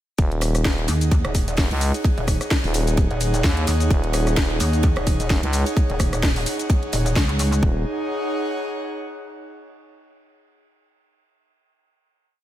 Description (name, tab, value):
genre	bass house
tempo	129 BPM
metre	4/4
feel	swing 56% on 16ths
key	Eb minor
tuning	A4 = 440 Hz
part	growling FM bass	bass	0.2-7.8 s	Eb1 to Eb2	-22 LUFS	equal	sidechain pumping
part	electronic kick drum	drums	0.2-7.7 s	none	-20 LUFS	equal	overdrive, studio reverb
part	garage drum kit	drums	0.2-7.6 s	hi-hat, rim click, shaker, snare drum	-26 LUFS	left 1 dB	overdrive, studio reverb
part	gated 80s drum kit	drums	0.2-7.5 s	hi-hat, ride cymbal, snare drum	-36 LUFS	right 2 dB	sidechain pumping on cymbals, high-pass filter on cymbals, studio reverb, sidechain pumping on hats, high-pass filter on hats, high-pass filter on snare, high-pass filter on room
part	airy breathy pad	texture	0.2-9.4 s	Eb4 to Gb5	-27 LUFS	equal	chorus, sidechain pumping
part	pulsing pluck wobble bass	bass	0.9-7.6 s	Eb1 to Eb2	-22 LUFS	equal	chorus, overdrive, sidechain pumping
room	small room ambience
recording	none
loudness	-18 LUFS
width	side -13 dB against mid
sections	0.2-7.6 drop; 7.6-9.5 final chord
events	drop 0.2-7.6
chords	0.2 Ebm